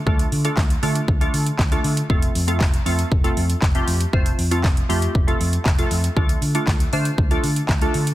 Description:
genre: dance-pop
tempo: 118 BPM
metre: 4/4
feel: straight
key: unclear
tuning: A4 = 437 Hz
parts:
  - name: glassy wavetable pluck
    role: accompaniment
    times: 0.1-8.0 s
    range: A3 to C5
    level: -25 LUFS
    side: right 1 dB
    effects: chorus
  - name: vintage muted fingered electric bass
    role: bass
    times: 0.1-8.1 s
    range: F1 to D3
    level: -22 LUFS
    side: equal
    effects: sidechain pumping
  - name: pop drum kit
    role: drums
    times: 0.1-8.1 s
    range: handclaps, hi-hat, kick drum, snare drum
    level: -20 LUFS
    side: equal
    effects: none
room: digital ambience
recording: dense, heavily limited modern master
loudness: -17 LUFS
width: side -15 dB against mid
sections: 0.0-8.1 A section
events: none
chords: 0.0 Dm; 2.1 F; 6.2 Dm

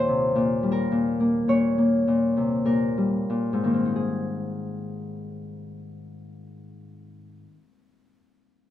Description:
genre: classical, solo harp piece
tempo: 44-57 BPM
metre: 4/4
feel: rubato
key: Ab major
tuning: A4 = 441 Hz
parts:
  - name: Celtic harp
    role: solo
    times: 0.0-7.5 s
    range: Eb2 to Db5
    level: -23 LUFS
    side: left 2 dB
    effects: none
room: light reverb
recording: close, detailed microphones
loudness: -21 LUFS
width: side -12 dB against mid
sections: 0.0-3.9 A section; 3.9-8.7 B section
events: slowing down 0.0-3.9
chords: 0.0 Eb7; 3.9 Ab

